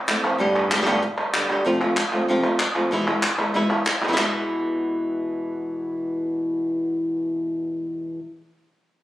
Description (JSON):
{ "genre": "flamenco", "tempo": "191 BPM", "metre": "4/4", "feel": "straight", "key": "E phrygian dominant", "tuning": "A4 = 440 Hz", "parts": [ { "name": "flamenco guitar", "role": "melody", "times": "0.1-8.2 s", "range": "E2 to G4", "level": "-22 LUFS", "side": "equal", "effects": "none" }, { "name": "palmas hand claps", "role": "percussion", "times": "0.1-4.2 s", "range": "none", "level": "-23 LUFS", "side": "equal", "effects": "none" } ], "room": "moderate large studio reverb, RT60 1.1 s", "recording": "recorded on a phone in the room, studio reverb, compression", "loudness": "-21 LUFS", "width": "side -15 dB against mid", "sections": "0.0-4.2 A section; 4.2-6.7 B section", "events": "none", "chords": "0.4 Gadd9; 1.7 F; 2.9 E", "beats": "0.09 | 0.40 0.71 1.03 1.34 | 1.66 1.97 2.28 2.60 | 2.91 3.23 3.54 3.86 | 4.17 4.49 4.80 5.12 | 5.43 5.75 6.06 6.37" }